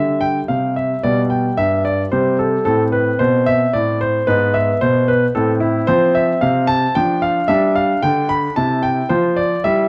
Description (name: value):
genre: classical-period piano sonatina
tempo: 112 BPM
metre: 3/4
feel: rubato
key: C major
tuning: A4 = 438 Hz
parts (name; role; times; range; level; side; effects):
- bright grand piano; solo; 0.0-9.9 s; G2 to B5; -17 LUFS; equal; none
room: light reverb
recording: dark, warm production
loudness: -17 LUFS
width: mono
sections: 0.0-9.9 A section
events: none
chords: 0.0 C5; 1.0 G/B; 2.1 C5; 2.7 Am; 4.3 Abm; 5.4 Am; 5.9 F5; 7.0 Dm/F; 7.5 G5; 8.6 C; 9.1 N.C.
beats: 0.50 | 1.04 1.58 2.13 | 2.66 3.20 3.74 | 4.28 4.82 5.35 | 5.88 6.42 6.96 | 7.49 8.03 8.57 | 9.11 9.65